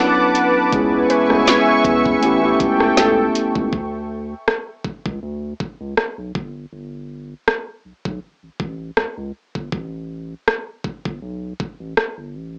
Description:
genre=contemporary R&B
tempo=80 BPM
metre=4/4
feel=swing 54% on 16ths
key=B minor from 3.7 s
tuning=A4 = 440 Hz
part: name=mellow tine electric piano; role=accompaniment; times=0.0-3.7 s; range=F#3 to B4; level=-20 LUFS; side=equal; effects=none
part: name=lush unison pad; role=sustained chords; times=0.0-3.7 s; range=A4 to D6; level=-20 LUFS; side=equal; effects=chorus, sidechain pumping
part: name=mallet-like synth pluck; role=texture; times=0.0-2.6 s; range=B4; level=-26 LUFS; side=equal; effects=chorus, analog delay
part: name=smooth R&B drum kit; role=drums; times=0.4-12.2 s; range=hi-hat, kick drum, rim click, snare drum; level=-22 LUFS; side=equal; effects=cassette tape
part: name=round analog bass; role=bass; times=0.7-12.6 s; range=G1 to E2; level=-32 LUFS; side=equal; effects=none
room=moderate small room reverb, RT60 0.6 s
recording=home recording on cassette, small speaker sound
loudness=-19 LUFS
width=mono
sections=0.0-3.7 A section; 3.7-12.6 B section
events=break 3.7-12.6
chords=0.0 Bm7; 0.7 C#m7; 2.2 A7; 3.7 Bmadd9 (rootless); 6.4 Gsus2; 9.7 Asus2

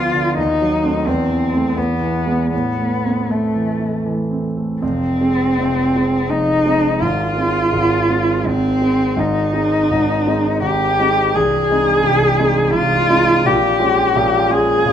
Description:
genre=classical, romantic duo for cello and grand piano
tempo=77-88 BPM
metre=3/4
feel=rubato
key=A minor, F minor from 4.8 s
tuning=A4 = 439 Hz
part: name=warm cello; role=melody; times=0.0-14.9 s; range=A3 to Ab4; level=-16 LUFS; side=left 1 dB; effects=none
part: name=clear concert grand piano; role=accompaniment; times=0.0-14.9 s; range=C1 to F4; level=-19 LUFS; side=right 2 dB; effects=none
room=moderate recital hall reverb, RT60 1.9 s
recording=close, detailed microphones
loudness=-14 LUFS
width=side -9 dB against mid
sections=0.0-4.8 A section; 4.8-14.9 B section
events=none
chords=0.4 D#dim7; 1.1 Am/E; 1.8 E; 2.5 Am; 4.8 Fm; 7.0 Fm/Ab; 9.2 Ab; 11.4 Ab/C; 13.4 Bbm7

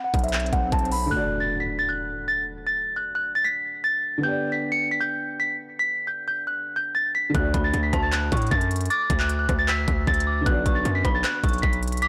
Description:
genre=hip hop, trap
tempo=154 BPM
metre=4/4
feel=half-time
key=D major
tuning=A4 = 439 Hz
part: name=celesta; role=melody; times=0.0-12.1 s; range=E5 to C#7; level=-27 LUFS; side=equal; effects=none
part: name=swell and impact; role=sound effects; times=0.0-2.7 s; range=none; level=-37 LUFS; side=equal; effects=none
part: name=distorted 808-style bass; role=bass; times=0.1-1.1, 7.3-12.1 s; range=B1 to A2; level=-28 LUFS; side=equal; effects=distortion
part: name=trap drum kit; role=drums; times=0.1-1.0, 7.3-12.1 s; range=handclaps, hi-hat, kick drum, rim click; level=-28 LUFS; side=equal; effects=overdrive
part: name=dark concert grand piano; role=accompaniment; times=1.1-12.1 s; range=D3 to D5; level=-34 LUFS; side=equal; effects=none
part: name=dark detuned synth bell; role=second line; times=7.5-12.1 s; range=A5 to F#6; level=-34 LUFS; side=equal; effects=chorus, tape echo
room=little or no reverb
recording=blown-out, overdriven recording, overdrive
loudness=-24 LUFS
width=mono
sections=0.0-1.1 A section; 1.1-12.1 B section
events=swell 0.0-1.1; impact 1.1-2.7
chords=0.0 B5; 1.1 D; 4.2 G; 7.3 D; 10.5 Bm

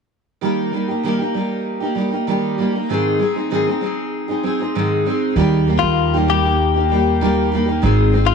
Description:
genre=acoustic pop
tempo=97 BPM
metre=4/4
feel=straight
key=Eb major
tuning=A4 = 439 Hz
part: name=picked steel-string acoustic guitar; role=accompaniment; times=0.4-8.3 s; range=Ab2 to Ab4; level=-18 LUFS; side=right 1 dB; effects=double-tracked left and right
part: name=upright bass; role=bass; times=5.4-8.3 s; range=Ab1 to Eb2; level=-18 LUFS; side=right 1 dB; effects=none
part: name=direct-recorded clean electric guitar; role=melody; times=5.8-8.3 s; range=F4 to G4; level=-19 LUFS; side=left 12 dB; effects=none
room=light reverb, studio reverb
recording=none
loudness=-16 LUFS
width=side -6 dB against mid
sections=0.4-5.4 A section; 5.4-8.3 B section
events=none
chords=0.4 Eb; 2.9 Ab; 5.4 Eb; 7.8 Ab

